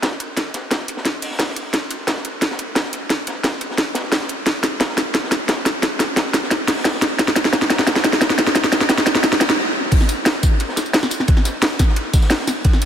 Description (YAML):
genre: drum and bass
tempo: 176 BPM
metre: 4/4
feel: straight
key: none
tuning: none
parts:
  - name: crunchy breakbeat drum kit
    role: drums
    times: 0.0-12.9 s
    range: hi-hat, ride cymbal, snare drum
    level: -26 LUFS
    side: equal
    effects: high-pass filter on cymbals, high-pass filter on hats, high-pass filter on snare, high-pass filter on room
  - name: drum and bass drum kit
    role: drums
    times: 0.0-12.9 s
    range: crash cymbal, hi-hat, snare drum, tambourine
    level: -17 LUFS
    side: equal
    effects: overdrive
  - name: electronic kick drum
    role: drums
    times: 0.0-12.7 s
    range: none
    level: -17 LUFS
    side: equal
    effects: overdrive, high-pass filter on kick, high-pass filter on room
room: wet huge ambient reverb, RT60 5.5 s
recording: dreamy mix soaked in reverb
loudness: -16 LUFS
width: side -9 dB against mid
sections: 0.0-9.9 A section; 9.9-12.9 B section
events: build-up 0.0-9.9; drum fill 0.0-9.6; stop 9.6-9.9; drop 9.9-12.9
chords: none